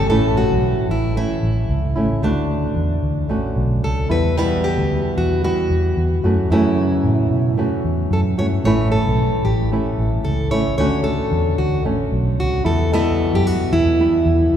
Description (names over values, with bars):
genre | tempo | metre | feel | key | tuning
acoustic pop | 112 BPM | 4/4 | swing 55% on 16ths | A mixolydian | A4 = 440 Hz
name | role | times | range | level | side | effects
fingerpicked plugged-in steel-string acoustic guitar | melody | 0.0-14.6 s | D4 to C#5 | -22 LUFS | equal | none
flamenco guitar | accompaniment | 0.0-14.6 s | E2 to F#4 | -21 LUFS | equal | none
vintage muted fingered electric bass | bass | 0.0-14.6 s | A1 to B2 | -19 LUFS | equal | none
room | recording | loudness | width
wet cathedral reverb, RT60 4.9 s | recorded in a church or concert hall | -16 LUFS | side -9 dB against mid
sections
0.1-14.6 A section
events
none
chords
0.1 A; 2.2 Dmaj7; 4.1 Em; 6.2 F#m7; 8.6 A; 10.8 Dmaj7; 12.7 Em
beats
| 0.09 0.62 1.16 1.69 | 2.23 2.76 3.30 3.83 | 4.37 4.90 5.44 5.97 | 6.51 7.04 7.58 8.11 | 8.64 9.18 9.71 10.25 | 10.78 11.32 11.85 12.38 | 12.92 13.45 13.99 14.52